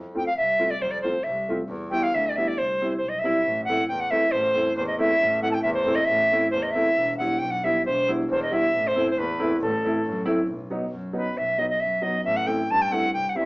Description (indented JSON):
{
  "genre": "klezmer",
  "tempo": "136 BPM",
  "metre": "2/4",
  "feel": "straight",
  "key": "C major, A dorian sharp4 from 3.5 s",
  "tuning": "A4 = 440 Hz",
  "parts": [
    { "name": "clear double bass", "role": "bass", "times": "0.0-13.5 s", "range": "E1 to G2", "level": "-32 LUFS", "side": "equal", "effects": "none" },
    { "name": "warm upright piano", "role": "accompaniment", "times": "0.1-13.5 s", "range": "F#3 to F4", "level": "-27 LUFS", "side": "equal", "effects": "none" },
    { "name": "bright reedy silver concert flute", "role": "melody", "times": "0.2-13.5 s", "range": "A4 to A5", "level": "-22 LUFS", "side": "equal", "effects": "none" }
  ],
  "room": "wet studio reverb, RT60 0.5 s",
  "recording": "band playing live in one room, small speaker sound",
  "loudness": "-21 LUFS",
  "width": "side -24 dB against mid",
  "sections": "0.0-3.5 A section; 3.5-10.5 B section; 10.5-13.5 C section",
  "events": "none",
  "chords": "0.0 F; 1.7 Em; 2.6 C; 3.5 Am; 7.0 Em; 8.7 Am; 10.5 B; 12.3 Am"
}